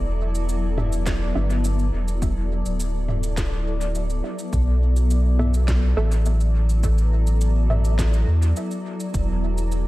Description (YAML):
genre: ambient dub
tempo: 104 BPM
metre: 4/4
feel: straight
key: unclear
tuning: A4 = 438 Hz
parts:
  - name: granular cloud pad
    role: sustained chords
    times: 0.0-9.9 s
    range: F#3 to D5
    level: -29 LUFS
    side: left 2 dB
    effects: built-in reverb, lush chorus
  - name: warm sub bass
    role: bass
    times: 0.0-9.9 s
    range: D1 to E2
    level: -20 LUFS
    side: equal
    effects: none
  - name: organic electronic drum kit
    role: drums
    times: 0.3-9.8 s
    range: cabasa, snare drum, toms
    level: -33 LUFS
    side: equal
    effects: dub echo
  - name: filtered dub chord stab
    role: stabs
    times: 0.8-7.8 s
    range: B3 to E5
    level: -32 LUFS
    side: right 2 dB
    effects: chorus, dub echo
  - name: electronic kick drum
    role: drums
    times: 1.1-9.3 s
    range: none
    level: -26 LUFS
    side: equal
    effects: overdrive
room: little or no reverb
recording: none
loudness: -19 LUFS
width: side -18 dB against mid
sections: 0.0-9.9 A section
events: none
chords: 0.0 Em7; 4.5 B7sus4; 9.1 N.C.